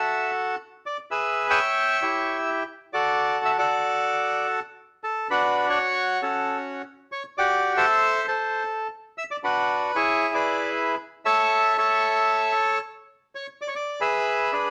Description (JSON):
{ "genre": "tango", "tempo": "115 BPM", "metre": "4/4", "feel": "rubato", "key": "D major", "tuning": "A4 = 439 Hz", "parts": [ { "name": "bandoneon", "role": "solo", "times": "0.0-14.7 s", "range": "C#4 to G5", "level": "-24 LUFS", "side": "equal", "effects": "none" } ], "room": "moderate studio reverb, RT60 0.8 s", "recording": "none", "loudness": "-24 LUFS", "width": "mono", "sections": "0.0-4.8 A section; 4.8-14.7 B section", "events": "none", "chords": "0.0 F#m7; 0.6 E; 1.6 Em6; 2.7 D; 5.8 F#m; 6.9 Em13; 7.9 Am; 8.9 D; 9.9 E; 11.0 A; 13.1 G#dim; 14.1 E7", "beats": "0.07 | 0.59 1.11 1.62 2.14 | 2.67 3.19 3.71 4.24 | 4.76 5.29 5.81 6.33 | 6.85 7.37 7.88 8.40 | 8.91 9.43 9.95 10.46 | 10.99 11.51 12.03 12.55 | 13.08 13.60 14.12 14.64" }